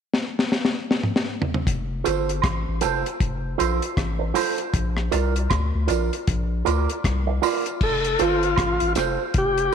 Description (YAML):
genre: roots reggae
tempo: 78 BPM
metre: 4/4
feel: swing 60% on 16ths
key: F major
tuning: A4 = 440 Hz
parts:
  - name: deep reggae drum kit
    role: drums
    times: 0.1-9.7 s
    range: crash cymbal, hi-hat, kick drum, rim click, snare drum, toms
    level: -24 LUFS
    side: left 2 dB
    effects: none
  - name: soft dub sub bass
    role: bass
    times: 1.7-9.7 s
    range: F1 to D2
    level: -25 LUFS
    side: left 1 dB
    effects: none
  - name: electric guitar with an envelope filter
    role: accompaniment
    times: 2.0-9.2 s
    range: F4 to D5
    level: -25 LUFS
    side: right 8 dB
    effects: lush chorus, dub echo
  - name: tambourine and woodblock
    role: percussion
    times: 2.1-9.2 s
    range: none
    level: -31 LUFS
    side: right 9 dB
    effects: none
  - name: tonewheel organ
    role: melody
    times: 7.8-9.7 s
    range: F4 to A4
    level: -22 LUFS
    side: left 2 dB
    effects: overdrive, slow rotary speaker, dub echo
room: moderate echo chamber reverb, RT60 2.2 s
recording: 1960s-style stereo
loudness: -20 LUFS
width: side -7 dB against mid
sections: 0.0-1.7 A section; 1.7-7.8 B section; 7.8-9.7 C section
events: drum fill 0.1-1.7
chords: 0.0 N.C.; 1.7 F; 4.7 Bb; 7.8 F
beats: 0.13 0.90 | 1.66 2.43 3.20 3.97 | 4.74 5.50 6.27 7.04 | 7.81 8.58 9.34